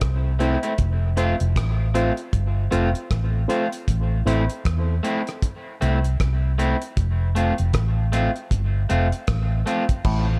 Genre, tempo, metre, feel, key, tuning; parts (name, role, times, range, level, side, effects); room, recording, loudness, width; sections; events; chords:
dub reggae; 78 BPM; 4/4; swing 59% on 16ths; A4 = 436 Hz
vintage muted fingered electric bass; bass; 0.0-10.4 s; F1 to E2; -24 LUFS; equal
cloth-damped thuddy drum kit; drums; 0.0-10.3 s; crash cymbal, hi-hat, kick drum, rim click; -27 LUFS; equal
electric guitar at the edge of break-up; accompaniment; 0.4-9.8 s; A3 to F4; -29 LUFS; equal; dub echo
reed electric piano; stabs; 0.4-4.4 s; C4 to C5; -32 LUFS; equal; dub echo
clav; riff; 10.1-10.3 s; A2; -29 LUFS; equal; dub echo
small room ambience; echo-heavy mix; -22 LUFS; mono
0.0-10.0 A section
0.0 Am; 0.8 F; 3.9 Am; 7.0 F